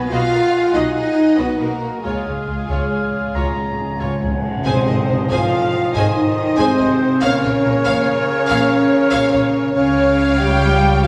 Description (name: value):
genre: cinematic, heroic adventure film score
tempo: 94 BPM (dotted quarters)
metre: 12/8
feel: straight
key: Ab major from 4.7 s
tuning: A4 = 441 Hz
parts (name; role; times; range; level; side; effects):
- warm symphonic violin section; melody; 0.0-11.1 s; G#4 to Ab5; -29 LUFS; equal; none
- clear oboe; second line; 0.0-11.1 s; Eb5 to A#5; -30 LUFS; equal; none
- mellow clarinet; second line; 0.0-11.1 s; Bb4 to D#5; -30 LUFS; equal; none
- warm symphonic violin section; second line; 0.0-11.1 s; E#4 to G5; -29 LUFS; equal; none
- mellow French horn section; sustained chords; 0.0-11.1 s; G#3 to G4; -21 LUFS; equal; none
- rich symphonic cello section; bass; 0.0-11.1 s; C3 to E#4; -26 LUFS; equal; none
- small flute group; second line; 0.1-11.1 s; G#4 to G5; -29 LUFS; equal; none
- clear symphonic viola section; accompaniment; 0.1-11.0 s; G#3 to F5; -28 LUFS; equal; none
- rich symphonic double bass section; bass; 0.1-11.1 s; Ab1 to C#2; -25 LUFS; equal; none
- cymbal swell and tam-tam; percussion; 2.0-6.3 s; none; -30 LUFS; equal; none
- timpani; percussion; 2.0-4.6 s; C#3; -29 LUFS; equal; none
room: wet recital hall reverb, RT60 1.7 s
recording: recorded in a church or concert hall, small room ambience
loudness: -17 LUFS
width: mono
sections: 0.0-4.7 A section; 4.7-11.1 A section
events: timpani fill 2.0-4.7; band accent 4.7-5.1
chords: 0.0 B; 2.0 C#; 4.7 Ab; 7.2 Bbm; 9.8 Db